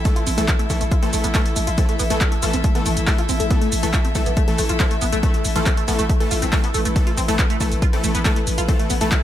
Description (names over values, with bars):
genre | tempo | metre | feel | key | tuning
driving peak-time techno | 139 BPM | 4/4 | straight | unclear | A4 = 438 Hz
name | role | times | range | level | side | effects
growling 808-style bass | bass | 0.0-9.1 s | A1 | -25 LUFS | equal | overdrive, sidechain pumping, low-pass filter
rich chamber string section | texture | 0.0-9.2 s | E4 to E5 | -29 LUFS | left 2 dB | sidechain pumping
tight sequenced synth | riff | 0.1-9.1 s | A3 to F4 | -26 LUFS | right 1 dB | chorus, phaser, overdrive, cassette tape, sidechain pumping, dub echo
supersaw stab | stabs | 0.1-9.2 s | E3 to A4 | -26 LUFS | left 2 dB | sidechain pumping, dub echo
electronic kick drum | drums | 0.1-9.2 s | none | -19 LUFS | equal | overdrive
punchy analog drum machine | drums | 0.1-9.2 s | handclaps, hi-hat, shaker | -26 LUFS | equal | overdrive, sidechain pumping on hats, sidechain pumping on perc
room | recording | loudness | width
light reverb, digital ambience | none | -17 LUFS | side -12 dB against mid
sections
0.0-9.2 A section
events
none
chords
0.0 A5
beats
| 0.05 0.48 0.92 1.35 | 1.78 2.21 2.64 3.07 | 3.50 3.94 4.37 4.80 | 5.23 5.66 6.09 6.53 | 6.96 7.39 7.82 8.25 | 8.69 9.12